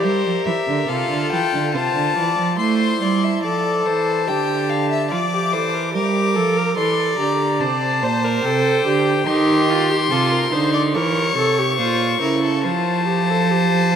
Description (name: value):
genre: classical, baroque-style fugue for string quartet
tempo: 72 BPM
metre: 4/4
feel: straight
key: unclear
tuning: A4 = 440 Hz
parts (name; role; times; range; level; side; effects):
- rich violin; melody; 0.0-14.0 s; C5 to D6; -22 LUFS; left 7 dB; none
- rich violin; second line; 0.0-14.0 s; G4 to G5; -23 LUFS; left 2 dB; none
- warm viola; accompaniment; 0.0-14.0 s; Eb4 to D5; -22 LUFS; right 1 dB; none
- dark cello; bass; 0.0-14.0 s; Bb2 to A3; -22 LUFS; right 6 dB; none
room: wet cathedral reverb, RT60 5.2 s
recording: in a vast, echoing space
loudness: -16 LUFS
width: side -8 dB against mid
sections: 0.0-2.6 A section; 2.6-14.0 B section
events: none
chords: 0.0 C7; 0.9 F/C; 2.6 Am; 4.3 Dm; 7.6 C5; 9.3 Cm/Eb; 10.9 Edim7; 12.6 F